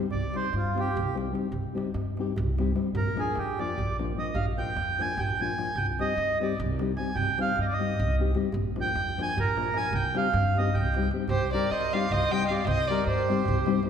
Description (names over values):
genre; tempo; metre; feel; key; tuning
balkan folk, Balkan wedding band; 302 BPM (eighths); 7/8; straight; C minor; A4 = 440 Hz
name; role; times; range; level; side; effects
nylon-string guitar; accompaniment; 0.0-13.9 s; F3 to G4; -31 LUFS; left 5 dB; none
accordion; second line; 0.1-13.8 s; F4 to Ab5; -29 LUFS; right 3 dB; none
upright bass; bass; 0.1-13.8 s; Bb1 to G2; -31 LUFS; equal; none
darbuka; percussion; 0.1-13.9 s; none; -34 LUFS; right 1 dB; none
dark violin; melody; 11.3-13.8 s; C5 to G5; -28 LUFS; equal; none
room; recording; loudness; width
wet concert hall reverb, RT60 1.9 s; recorded in a church or concert hall; -25 LUFS; side -8 dB against mid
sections
0.1-11.3 A section; 11.3-13.9 B section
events
speeding up 0.0-13.9; accordion solo 0.1-11.3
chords
0.1 Cm; 3.0 Bb; 5.8 Cm; 8.5 Bb; 9.9 Cm